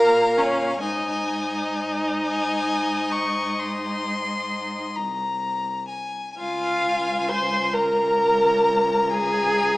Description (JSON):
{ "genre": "classical, slow romantic movement for string quartet", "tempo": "44 BPM (dotted quarters)", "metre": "12/8", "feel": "rubato", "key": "Db major", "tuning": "A4 = 439 Hz", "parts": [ { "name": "clear violin", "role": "melody", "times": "0.0-9.8 s", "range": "F5 to Db6", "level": "-27 LUFS", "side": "left 3 dB", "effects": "none" }, { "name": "rich violin", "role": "second line", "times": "0.0-9.8 s", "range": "Db5 to C6", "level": "-27 LUFS", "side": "left 1 dB", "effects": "none" }, { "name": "rich viola", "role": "accompaniment", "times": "0.0-9.8 s", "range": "Db4 to C5", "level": "-23 LUFS", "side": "right 1 dB", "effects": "none" }, { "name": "dark cello", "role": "bass", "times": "0.0-9.8 s", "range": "C2 to Bb2", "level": "-30 LUFS", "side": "right 1 dB", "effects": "none" } ], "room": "moderate recital hall reverb, RT60 1.8 s", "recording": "small speaker sound", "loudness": "-21 LUFS", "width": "side -19 dB against mid", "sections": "0.0-9.8 A section", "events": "none", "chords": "0.0 Bbm; 0.8 Ab; 6.4 Db" }